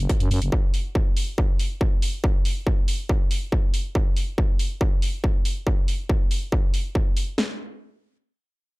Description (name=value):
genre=driving peak-time techno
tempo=140 BPM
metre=4/4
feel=straight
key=unclear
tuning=A4 = 439 Hz
part: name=growling FM bass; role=bass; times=0.0-0.5 s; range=F#1 to F#2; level=-22 LUFS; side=equal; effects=sidechain pumping
part: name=deep dark ambient pad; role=texture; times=0.0-0.5 s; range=none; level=barely audible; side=none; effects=none
part: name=electronic hi-hat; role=drums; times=0.1-7.3 s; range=none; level=-32 LUFS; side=right 1 dB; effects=sidechain pumping on hats, sidechain pumping on cymbals
part: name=techno drum kit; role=drums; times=0.1-7.5 s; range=kick drum, snare drum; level=-21 LUFS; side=equal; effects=distortion
room=little or no reverb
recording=echo-heavy mix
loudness=-21 LUFS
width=side -23 dB against mid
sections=0.0-7.4 A section; 7.4-8.8 B section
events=none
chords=0.0 F#5; 7.4 N.C.